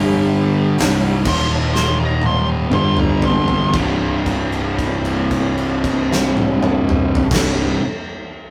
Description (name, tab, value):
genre	stoner and doom metal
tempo	57-67 BPM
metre	4/4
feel	straight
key	C minor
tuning	A4 = 445 Hz
part	fuzz lead guitar	melody	0.0-3.7 s	G4 to C6	-26 LUFS	equal	wah, distortion, tape echo
part	fuzz guitar	riff	0.0-7.8 s	C2 to G3	-20 LUFS	equal	distortion
part	fuzz fingered electric bass	bass	0.0-7.8 s	C1 to G1	-26 LUFS	equal	overdrive
part	oversized low-tuned drum kit	drums	0.8-7.6 s	crash cymbal, hi-hat, kick drum, snare drum, toms	-22 LUFS	equal	none
room	light reverb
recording	rough rehearsal-room recording, tube saturation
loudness	-17 LUFS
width	mono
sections	0.0-3.7 A section; 3.7-7.9 B section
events	slowing down 0.0-3.7; lead electric guitar solo 0.0-3.7; drum fill 1.7-3.7; held note 3.7-7.3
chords	0.0 G5; 0.8 C5; 1.3 Eb5; 2.7 G5; 3.7 C5